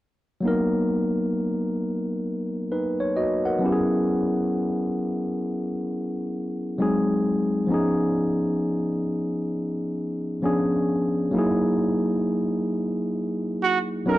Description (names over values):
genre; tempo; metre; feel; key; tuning
R&B; 66 BPM; 4/4; swing 64% on 16ths; B major; A4 = 440 Hz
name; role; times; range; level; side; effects
barky tine electric piano; accompaniment; 0.4-14.2 s; E#3 to F#5; -22 LUFS; equal; overdrive
bright trumpet; melody; 13.6-14.2 s; F#4 to A#4; -22 LUFS; right 5 dB; none
room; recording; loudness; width
studio ambience; dry, close 1970s-style studio recording; -22 LUFS; side -15 dB against mid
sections
0.4-14.2 A section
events
none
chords
0.4 Bmaj7; 3.6 E69; 6.8 G#7; 7.7 C#9/E#; 10.4 C#7b9; 11.3 F#13